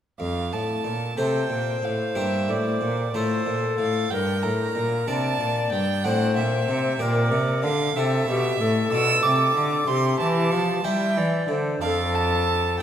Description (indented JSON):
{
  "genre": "classical, baroque-style sonata movement with continuo",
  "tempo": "62 BPM (dotted quarters)",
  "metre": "6/8",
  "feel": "straight",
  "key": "F major, C major from 8.0 s",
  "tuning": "A4 = 441 Hz",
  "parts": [
    { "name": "warm violin", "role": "second line", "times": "0.2-12.8 s", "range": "C5 to E6", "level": "-27 LUFS", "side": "right 5 dB", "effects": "none" },
    { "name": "harpsichord", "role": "accompaniment", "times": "0.2-12.8 s", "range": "F2 to D5", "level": "-28 LUFS", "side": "left 1 dB", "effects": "none" },
    { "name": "rich cello", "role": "bass", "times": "0.2-12.8 s", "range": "F2 to G3", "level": "-26 LUFS", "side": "right 1 dB", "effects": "none" },
    { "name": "tenor recorder", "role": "melody", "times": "1.2-12.8 s", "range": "G4 to E5", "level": "-26 LUFS", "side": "left 4 dB", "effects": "none" }
  ],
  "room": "wet scoring stage reverb, RT60 2.1 s",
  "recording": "none",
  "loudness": "-21 LUFS",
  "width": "side -9 dB against mid",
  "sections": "0.2-12.8 A section",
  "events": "none",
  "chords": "0.2 F; 2.2 C5/G; 3.1 F/A; 4.1 Gm; 6.0 D5/A; 7.0 Gm/Bb; 8.0 C; 8.9 Dm13/B; 9.9 C; 11.8 Dm/F",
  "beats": "| 0.20 1.18 | 2.16 3.14 | 4.11 5.08 | 6.04 7.00 | 7.96 8.92 | 9.88 10.85 | 11.81 12.80"
}